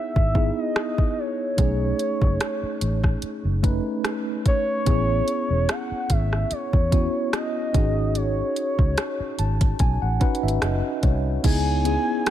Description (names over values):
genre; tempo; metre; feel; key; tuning
contemporary R&B; 73 BPM; 4/4; swing 54% on 16ths; C# minor; A4 = 440 Hz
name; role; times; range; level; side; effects
gliding portamento lead; melody; 0.0-12.3 s; C#5 to G#5; -27 LUFS; right 1 dB; chorus, tape echo
mellow tine electric piano; accompaniment; 0.0-12.3 s; A3 to A5; -27 LUFS; equal; medium stereo tremolo
vintage muted fingered electric bass; bass; 0.2-12.0 s; E1 to E2; -24 LUFS; equal; none
smooth R&B drum kit; drums; 0.2-12.3 s; crash cymbal, hi-hat, kick drum, rim click; -23 LUFS; equal; none
glass harmonica; sustained chords; 11.4-12.3 s; B3 to C#5; -36 LUFS; right 2 dB; stereo widening
room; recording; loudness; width
little or no reverb; none; -20 LUFS; side -11 dB against mid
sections
0.0-11.4 A section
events
tine electric piano fill 9.0-11.4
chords
0.0 C#m7; 1.6 B13; 4.9 Amaj9 (rootless); 7.7 G#7sus4; 11.4 C#m7